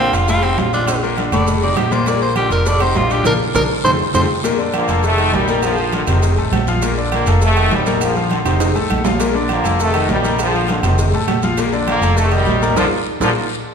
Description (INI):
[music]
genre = latin, salsa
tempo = 202 BPM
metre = 4/4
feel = straight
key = Bb major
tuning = A4 = 441 Hz
[part]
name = raspy tenor saxophone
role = melody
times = 0.0-4.2 s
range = C4 to D5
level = -18 LUFS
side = right 1 dB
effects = none
[part]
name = bright grand piano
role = accompaniment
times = 0.0-13.3 s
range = A2 to Bb5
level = -20 LUFS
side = left 4 dB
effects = none
[part]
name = upright bass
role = bass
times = 0.0-13.3 s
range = F1 to F2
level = -20 LUFS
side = right 1 dB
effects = none
[part]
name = agogo bells and timbales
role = percussion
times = 0.1-13.3 s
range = none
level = -24 LUFS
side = right 7 dB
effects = none
[part]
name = cowbell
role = percussion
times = 0.1-13.3 s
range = none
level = -27 LUFS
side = left 4 dB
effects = none
[part]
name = guiro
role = percussion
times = 0.1-13.3 s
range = none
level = -33 LUFS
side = left 5 dB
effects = none
[part]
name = maracas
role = percussion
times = 0.1-13.3 s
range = none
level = -33 LUFS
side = right 6 dB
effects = none
[part]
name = congas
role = percussion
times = 0.3-13.3 s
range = none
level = -26 LUFS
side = equal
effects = none
[part]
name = brilliant trombone section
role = melody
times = 4.8-13.3 s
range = A2 to Bb3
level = -19 LUFS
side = equal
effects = none
[sound]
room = wet recital hall reverb, RT60 1.5 s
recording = recorded in a church or concert hall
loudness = -14 LUFS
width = side -6 dB against mid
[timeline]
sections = 0.0-4.4 A section; 4.4-13.7 B section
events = tenor saxophone solo 0.0-4.4; drum fill 3.3-4.4, 8.5-9.2, 13.1-13.7; band accent 3.3-4.4, 12.8-13.7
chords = 0.3 F7; 0.9 Bb; 1.5 F7; 2.1 Bb; 2.7 F7; 3.3 Bb; 3.8 F; 4.4 Bb; 5.0 F7; 5.6 Bb; 6.2 F; 6.8 Bb; 7.4 F7; 8.0 Bb; 8.6 F; 9.2 Bb; 9.8 F7; 10.4 Bb; 11.0 F; 11.6 Bb; 12.2 F7; 12.8 Bb